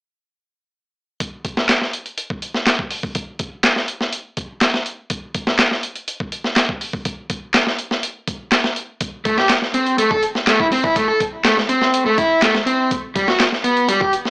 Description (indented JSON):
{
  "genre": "breakbeat, breaks",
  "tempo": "123 BPM",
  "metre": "4/4",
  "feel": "straight",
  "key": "A dorian",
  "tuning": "A4 = 437 Hz",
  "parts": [
    { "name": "breakbeat sampler-style drum kit", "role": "drums", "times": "1.2-14.3 s", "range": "hi-hat, kick drum, snare drum", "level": "-19 LUFS", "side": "equal", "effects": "small room ambience" },
    { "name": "electronic handclaps", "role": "drums", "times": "1.7-13.5 s", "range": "none", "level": "-20 LUFS", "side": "equal", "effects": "overdrive, small room ambience" },
    { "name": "overdriven semi-hollow guitar", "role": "riff", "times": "9.3-14.1 s", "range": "G3 to A4", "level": "-16 LUFS", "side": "equal", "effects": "tube saturation, digital delay" }
  ],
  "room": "moderate small room reverb, RT60 0.5 s",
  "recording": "small speaker sound",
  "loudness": "-16 LUFS",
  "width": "side -36 dB against mid",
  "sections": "1.2-14.3 A section",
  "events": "none",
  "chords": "none",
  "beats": "| 1.20 1.69 2.18 2.67 | 3.15 3.64 4.13 4.62 | 5.11 5.59 6.08 6.57 | 7.06 7.54 8.03 8.52 | 9.01 9.50 9.98 10.47 | 10.96 11.45 11.94 12.42 | 12.91 13.40 13.89"
}